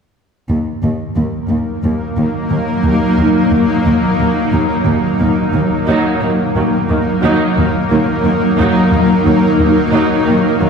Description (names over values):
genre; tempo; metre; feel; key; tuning
cinematic; 89 BPM; 4/4; straight; Eb minor; A4 = 440 Hz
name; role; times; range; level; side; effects
granular cloud pad; sustained chords; 1.7-10.7 s; Gb3 to Bb4; -14 LUFS; equal; built-in reverb
warm symphonic cello section; bass; 0.5-10.7 s; Eb2; -17 LUFS; equal; none
rich symphonic viola section; accompaniment; 5.9-10.7 s; Eb3 to Eb4; -18 LUFS; right 2 dB; none
room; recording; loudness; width
wet scoring stage reverb, RT60 1.8 s; heard from further back in the room; -12 LUFS; side -6 dB against mid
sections
0.5-5.9 A section; 5.9-10.7 B section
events
build-up 5.9-10.7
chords
0.5 Ebm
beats
| 0.49 1.17 1.84 2.51 | 3.19 3.86 4.54 5.21 | 5.88 6.56 7.23 7.91 | 8.58 9.26 9.93 10.60